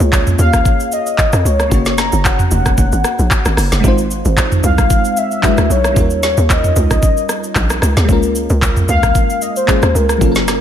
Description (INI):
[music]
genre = amapiano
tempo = 113 BPM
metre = 4/4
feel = swing 55% on 16ths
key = unclear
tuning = A4 = 440 Hz
[part]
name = bell-like FM electric piano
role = accompaniment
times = 0.0-10.6 s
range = F#3 to Db5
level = -20 LUFS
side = left 1 dB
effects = chorus, phaser
[part]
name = hollow log drum bass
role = bass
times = 0.0-10.6 s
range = F1 to F2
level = -15 LUFS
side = equal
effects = none
[part]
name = smooth R&B drum kit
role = drums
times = 0.0-10.6 s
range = handclaps, hi-hat, kick drum, rim click, shaker, snare drum, toms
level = -15 LUFS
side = equal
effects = none
[part]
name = warm velvety synth lead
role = melody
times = 0.4-10.6 s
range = Bb4 to Bb5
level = -18 LUFS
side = left 1 dB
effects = chorus, diffuse ambient delay
[sound]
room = light reverb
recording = none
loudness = -11 LUFS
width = side -10 dB against mid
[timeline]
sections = 0.0-10.6 A section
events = none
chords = 0.0 Db6; 1.7 Gbmaj7; 3.8 Ab6; 5.4 E9; 6.0 Eb9; 8.1 Db6